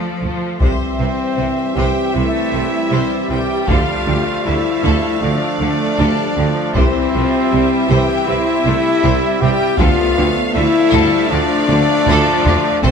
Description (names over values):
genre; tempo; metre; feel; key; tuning
cinematic, epic orchestral film score; 78 BPM; 4/4; straight; C major; A4 = 441 Hz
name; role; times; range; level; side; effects
rich symphonic violin section; melody; 0.0-12.9 s; C5 to G5; -26 LUFS; left 2 dB; none
rich studio violin section; second line; 0.0-12.9 s; F4 to F5; -24 LUFS; left 1 dB; none
clear symphonic viola section; accompaniment; 0.0-12.9 s; E3 to C4; -24 LUFS; right 1 dB; none
mellow French horn section; sustained chords; 0.0-12.9 s; F3 to A4; -20 LUFS; left 7 dB; none
bright symphonic cello section; bass; 0.0-12.9 s; C3 to F3; -24 LUFS; right 3 dB; none
clear symphonic double bass section; bass; 0.2-12.9 s; C2 to D2; -22 LUFS; right 3 dB; none
clear trombone section; sustained chords; 0.6-12.9 s; E3 to E4; -26 LUFS; right 6 dB; none
pipe organ, stopped flute; sustained chords; 0.6-12.9 s; F3 to E5; -24 LUFS; left 2 dB; none
warm trumpet; stabs; 0.6-12.9 s; C4 to G4; -22 LUFS; right 1 dB; none
warm tuba; bass; 0.6-12.9 s; C2 to D2; -25 LUFS; right 4 dB; none
taiko ensemble; drums; 0.6-12.9 s; none; -19 LUFS; equal; none
room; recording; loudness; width
moderate scoring stage reverb, RT60 1.7 s; none; -13 LUFS; side -6 dB against mid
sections
0.6-12.9 A section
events
drum fill 11.7-12.8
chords
0.0 Dm; 0.6 C; 3.7 Dm; 6.8 C; 9.8 Dm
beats
| 0.61 1.38 2.15 2.92 | 3.69 4.46 5.22 5.99 | 6.75 7.52 8.28 9.04 | 9.79 10.55 11.31 12.07 | 12.83